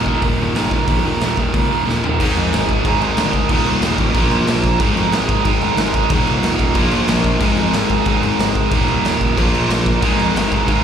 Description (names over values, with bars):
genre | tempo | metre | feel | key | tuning
punk rock | 184 BPM | 4/4 | straight | unclear | A4 = 441 Hz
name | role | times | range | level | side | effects
overdriven semi-hollow guitar | riff | 0.0-10.8 s | Eb2 to Bb3 | -20 LUFS | left 9 dB | slapback echo
overdriven semi-hollow guitar | riff | 0.0-10.8 s | Eb2 to F4 | -19 LUFS | right 11 dB | none
overdriven picked electric bass | bass | 0.0-10.8 s | Eb1 to F2 | -22 LUFS | equal | none
raw garage drum kit | drums | 0.1-10.8 s | crash cymbal, hi-hat, kick drum, snare drum, toms | -19 LUFS | equal | none
room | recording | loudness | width
studio ambience | live gig heard through the venue's PA, club reverb | -14 LUFS | side -8 dB against mid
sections
0.0-2.2 A section; 2.2-10.8 B section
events
drum fill 1.9-2.2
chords
0.0 Eb5; 2.2 Ab; 3.5 Eb; 4.1 Bb; 4.8 Ab; 6.1 Eb; 6.8 Bb; 7.4 Ab; 8.7 Eb; 9.4 Bb; 10.0 Ab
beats
0.22 0.55 | 0.87 1.20 1.53 1.85 | 2.18 2.51 2.83 3.16 | 3.49 3.81 4.14 4.47 | 4.79 5.12 5.45 5.77 | 6.10 6.43 6.75 7.08 | 7.41 7.73 8.06 8.39 | 8.71 9.04 9.37 9.69 | 10.02 10.35 10.67